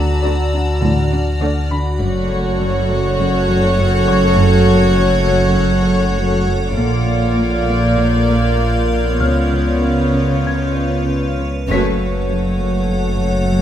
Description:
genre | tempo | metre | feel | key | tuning
cinematic | 101 BPM | 4/4 | straight | unclear | A4 = 438 Hz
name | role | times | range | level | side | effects
icy glass pad | sustained chords | 0.0-13.6 s | F#4 to F#5 | -24 LUFS | equal | chorus, built-in reverb
warm studio cello section | riff | 0.0-13.6 s | F#2 to D4 | -24 LUFS | equal | none
dark studio double bass section | bass | 0.0-13.6 s | F#1 to D2 | -21 LUFS | right 2 dB | none
warm studio cello section | bass | 0.0-13.6 s | D2 to C#3 | -20 LUFS | right 1 dB | none
sub bass with octave | drone | 0.0-13.6 s | F#1 to D2 | -21 LUFS | equal | none
bright baby grand piano | texture | 0.0-13.6 s | C#5 to B6 | -30 LUFS | left 2 dB | none
warm studio violin section | texture | 0.0-11.3 s | A5 to G#6 | -29 LUFS | left 2 dB | none
warm studio violin section | melody | 0.2-13.6 s | C#5 to D5 | -23 LUFS | equal | none
warm studio viola section | accompaniment | 0.2-13.6 s | A3 to F#4 | -20 LUFS | left 1 dB | none
room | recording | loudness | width
light reverb | close, detailed microphones | -13 LUFS | side -10 dB against mid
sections
0.0-11.7 A section; 11.7-13.6 B section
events
band accent 11.7-12.3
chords
0.0 D; 2.0 F#m; 6.8 Bb; 9.2 C#7; 11.7 F#m

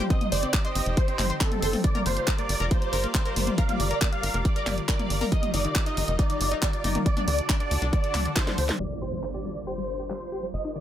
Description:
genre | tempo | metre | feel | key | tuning
uplifting trance | 138 BPM | 4/4 | straight | G minor | A4 = 437 Hz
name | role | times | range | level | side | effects
lush unison pad | sustained chords | 0.0-10.8 s | D3 to D5 | -36 LUFS | equal | chorus, sidechain pumping
analog pluck | arpeggios | 0.0-10.8 s | D3 to C5 | -35 LUFS | left 4 dB | lush chorus, sidechain pumping, dub echo
tight sequencer bass | bass | 0.0-10.8 s | F1 to D2 | -29 LUFS | equal | tube saturation, sidechain pumping
big supersaw lead | melody | 0.1-10.8 s | A4 to F5 | -30 LUFS | right 1 dB | phaser, sidechain pumping, low-pass filter, dub echo
electronic kick drum | drums | 0.1-8.5 s | none | -25 LUFS | equal | none
house drum kit | drums | 0.1-10.2 s | handclaps, hi-hat, snare drum, toms | -30 LUFS | left 1 dB | none
plucky unison lead | second line | 8.8-10.8 s | C6 to Eb6 | -51 LUFS | equal | none
impact | sound effects | 8.8-10.5 s | none | -37 LUFS | equal | none
room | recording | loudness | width
little or no reverb | low-pass filter | -23 LUFS | side -11 dB against mid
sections
0.0-8.8 A section; 8.8-10.8 B section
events
drum fill 8.4-8.8; band accent 8.7; impact 8.8-10.5; filter sweep on supersaw synth 8.8-10.8; filter sweep on synth pluck 8.8-10.8; filter sweep on analog synth pad 8.8-10.8; filter sweep 8.8-10.8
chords
0.1 Cm; 1.8 Bb; 5.3 Ebadd9; 7.1 D; 8.8 Gm7

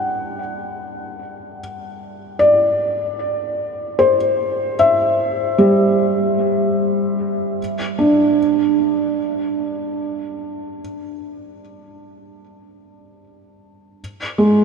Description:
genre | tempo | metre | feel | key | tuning
ambient | free time | none | none | unclear | A4 = 444 Hz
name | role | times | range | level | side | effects
felt-muted upright piano | solo | 0.0-14.6 s | G3 to F#5 | -16 LUFS | equal | tape echo
room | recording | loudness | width
wet huge ambient reverb, RT60 7.5 s | none | -15 LUFS | side -5 dB against mid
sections
0.0-7.6 A section; 7.6-14.6 B section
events
none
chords
0.0 Cadd9; 7.6 N.C.

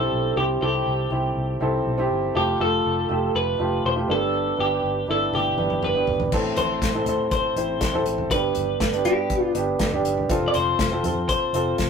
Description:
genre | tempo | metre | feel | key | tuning
piano-driven pop | 121 BPM | 4/4 | straight | unclear | A4 = 440 Hz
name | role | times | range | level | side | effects
twelve-string electric guitar | melody | 0.0-11.9 s | G4 to D5 | -24 LUFS | left 1 dB | none
warm concert grand piano | accompaniment | 0.0-11.9 s | G2 to C5 | -24 LUFS | right 2 dB | none
vintage muted fingered electric bass | bass | 0.0-11.9 s | E1 to A2 | -30 LUFS | left 1 dB | none
unplugged drum kit | drums | 5.3-11.9 s | crash cymbal, hi-hat, kick drum, snare drum, toms | -27 LUFS | left 1 dB | none
room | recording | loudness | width
moderate studio reverb, RT60 0.7 s | rough rehearsal-room recording | -20 LUFS | side -6 dB against mid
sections
0.0-6.3 A section; 6.3-11.9 B section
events
drum fill 5.3-6.3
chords
0.0 C; 2.4 Fadd9; 4.1 G; 6.3 Am; 8.3 G; 10.3 F

